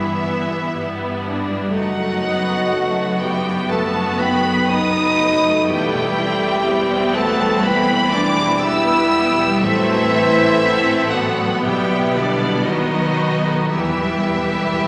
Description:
classical, slow romantic movement for symphony orchestra; 60 BPM; 4/4; rubato; E minor; A4 = 440 Hz
rich studio violin section; melody; 0.0-14.9 s; D5 to E6; -25 LUFS; equal
mellow large flute ensemble; second line; 0.0-14.9 s; B4 to B5; -28 LUFS; equal
rich studio violin section; second line; 0.0-14.9 s; B3 to A4; -28 LUFS; equal
warm clarinet; second line; 0.0-14.9 s; D4 to E5; -28 LUFS; equal
rich studio viola section; accompaniment; 0.0-14.9 s; E3 to C4; -26 LUFS; equal
dark French horn section; sustained chords; 0.0-14.9 s; D3 to E4; -25 LUFS; equal
concert harp; arpeggios; 0.0-14.9 s; E2 to B5; -27 LUFS; equal
rich studio cello section; bass; 0.0-14.9 s; E2 to B2; -31 LUFS; equal
rich studio double bass section; bass; 0.0-14.9 s; E1 to B1; -34 LUFS; equal
timpani; percussion; 11.7-14.9 s; E2 to B2; -37 LUFS; equal
wet recital hall reverb, RT60 1.6 s; -18 LUFS; mono
0.0-14.9 A section
timpani fill 13.7-14.9
0.0 Em/G; 1.7 B7/F#; 5.7 Em; 9.6 F#dim/A; 11.7 Em/B; 12.7 B7; 13.7 Em

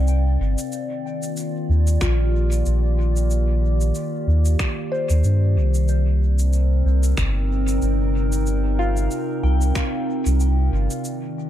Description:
ambient dub; 93 BPM; 4/4; swing 56% on 16ths; C minor; A4 = 441 Hz
warbly tape-like pad; sustained chords; 0.0-11.5 s; C3 to D5; -26 LUFS; equal; chorus, built-in reverb
soft synth bell; arpeggios; 0.0-11.5 s; F4 to G5; -32 LUFS; left 4 dB; chorus, phaser, low-pass filter, dub echo
soft dub sub bass; bass; 0.0-10.9 s; G1 to G2; -18 LUFS; equal
electronic shaker and finger snaps; drums; 0.1-11.2 s; -32 LUFS; equal; overdrive, dub echo
electronic kick drum; drums; 2.0-9.9 s; -26 LUFS; equal; overdrive
digital ambience; -18 LUFS; side -12 dB against mid
0.0-11.5 A section
filter sweep on synth bell 0.0-11.5
0.0 Cm7; 0.7 Ebmaj7; 5.9 Cm7

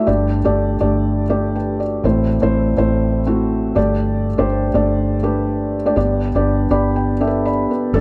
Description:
piano-driven pop; 122 BPM; 4/4; swing 56% on 16ths; G major; A4 = 440 Hz
felt-muted upright piano; accompaniment; 0.0-8.0 s; G2 to B5; -19 LUFS; equal
vintage muted fingered electric bass; bass; 0.1-8.0 s; G1 to A1; -23 LUFS; equal
moderate spring reverb, RT60 2.5 s; -18 LUFS; mono
0.0-7.9 A section
felt piano fill 6.5-7.9
0.1 Gsus2; 2.0 Am; 3.8 Gsus2; 6.0 G

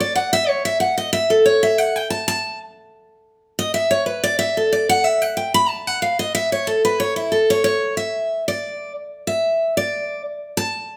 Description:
bluegrass; 184 BPM; 4/4; swing 54% on 8ths; A4 = 441 Hz
picked steel-string acoustic guitar; solo; 0.0-11.0 s; E4 to B5; -20 LUFS; equal
moderate large studio reverb, RT60 1.1 s; -20 LUFS; mono
0.0-3.1 A section; 3.1-11.0 A section
steel-string acoustic guitar solo 0.0-11.0

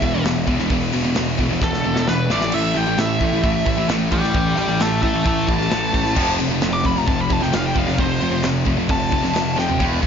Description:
heavy metal; 132 BPM; 4/4; straight; A4 = 441 Hz
high-gain lead guitar; melody; 0.0-9.8 s; A4 to D6; -24 LUFS; equal; distortion, tape echo
heavy high-gain guitar; riff; 0.0-10.1 s; E2 to A3; -24 LUFS; left 12 dB; distortion
heavy high-gain guitar; riff; 0.0-9.8 s; E2 to A3; -27 LUFS; equal; distortion
high-gain distorted guitar; riff; 0.0-10.1 s; E2 to A3; -25 LUFS; right 12 dB; distortion
fuzz picked electric bass; bass; 0.0-10.1 s; E1 to A1; -24 LUFS; equal; overdrive
modern studio drum kit; drums; 0.0-10.1 s; crash cymbal, hi-hat, kick drum, snare drum, toms; -24 LUFS; equal
light reverb, small room ambience; nothing above 7.5 kHz; -17 LUFS; side -7 dB against mid
0.0-9.8 A section
lead electric guitar solo 0.0-9.8; drum fill 1.6-2.5, 9.6
0.0 E5; 2.3 A5; 6.2 F

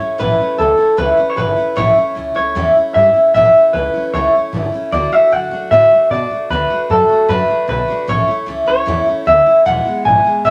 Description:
rockabilly; 152 BPM; 4/4; straight; A major; A4 = 439 Hz
electric guitar through a small old amp; melody; 0.0-10.5 s; A4 to G#5; -15 LUFS; equal
picked steel-string acoustic guitar; accompaniment; 0.0-10.5 s; E2 to F#4; -20 LUFS; equal
upright bass; bass; 0.0-10.5 s; E1 to B2; -25 LUFS; equal
wet large studio reverb, RT60 0.9 s; -14 LUFS; mono
0.0-10.5 A section
0.0 A; 4.9 D; 8.1 A; 9.7 E

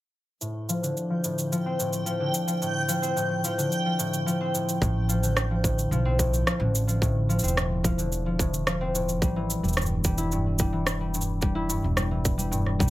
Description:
folktronica; 109 BPM; 4/4; straight; A4 = 436 Hz
concert harp; arpeggios; 0.4-12.9 s; G2 to E4; -26 LUFS; left 1 dB; low-pass filter, digital delay
electronic shaker and rim click; drums; 0.4-12.9 s; -29 LUFS; right 1 dB; overdrive
backwards swelling texture; texture; 1.6-4.8 s; G5; -33 LUFS; right 2 dB; built-in reverb
upright bass; bass; 4.8-12.9 s; E1 to B1; -27 LUFS; equal
electronic kick drum; drums; 4.8-12.9 s; -26 LUFS; equal; overdrive
moderate studio reverb, RT60 0.6 s; -23 LUFS; side -16 dB against mid
0.4-4.8 A section; 4.8-12.9 B section
filter sweep on harp 0.4-4.8
0.4 Dm7/A; 9.2 Em

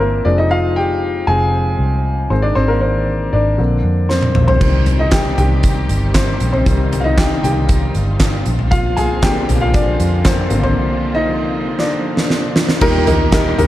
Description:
piano-driven pop; 117 BPM; 4/4; straight; A4 = 445 Hz
clear upright piano; accompaniment; 0.0-13.7 s; Bb2 to Ab5; -17 LUFS; left 2 dB
vintage muted fingered electric bass; bass; 0.0-13.7 s; F1 to F2; -17 LUFS; equal
huge arena drum kit; drums; 4.1-13.7 s; crash cymbal, handclaps, hi-hat, kick drum, snare drum, toms; -16 LUFS; equal
rich studio string section; sustained chords; 4.6-13.7 s; Bb2 to G4; -26 LUFS; right 2 dB
picked steel-string acoustic guitar; riff; 12.8-13.7 s; Eb3 to Bb4; -22 LUFS; right 7 dB
light reverb, studio reverb; dark, warm production; -13 LUFS; side -14 dB against mid
0.0-4.6 A section; 4.6-12.8 B section
upright piano solo 0.0-4.6, 4.6-12.8; drum fill 4.1-4.6, 11.8-12.8; break 10.8-12.8
0.3 Fm; 2.3 Ab; 3.6 Bbadd9; 4.6 Cm; 8.5 Bbadd9; 12.8 Eb

